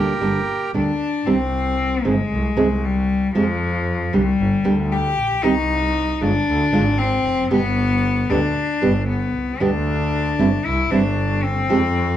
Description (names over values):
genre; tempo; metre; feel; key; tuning
tango; 115 BPM; 4/4; rubato; C harmonic minor; A4 = 440 Hz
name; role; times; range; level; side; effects
bandoneon; melody; 0.0-0.7 s; G4 to Bb4; -23 LUFS; right 3 dB; none
rich cello; second line; 0.0-12.2 s; Bb2 to G4; -21 LUFS; left 4 dB; none
nylon-string guitar; accompaniment; 0.0-11.8 s; B2 to A4; -20 LUFS; right 3 dB; none
bright double bass; bass; 0.0-12.2 s; F1 to F2; -23 LUFS; right 1 dB; none
room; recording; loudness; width
light reverb; none; -17 LUFS; side -11 dB against mid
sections
0.0-1.3 A section; 1.3-12.2 B section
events
cello solo 1.3-12.2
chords
0.0 Gmadd9; 1.3 Cm; 2.3 Ab/C; 3.4 Fsus2; 4.4 Gm; 5.4 Cm; 6.5 Ddim; 7.5 G; 10.7 C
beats
0.21 0.74 | 1.26 1.79 2.31 2.83 | 3.36 3.88 4.40 4.92 | 5.44 5.95 6.47 6.99 | 7.51 8.04 8.56 9.08 | 9.61 10.13 10.65 11.17 | 11.70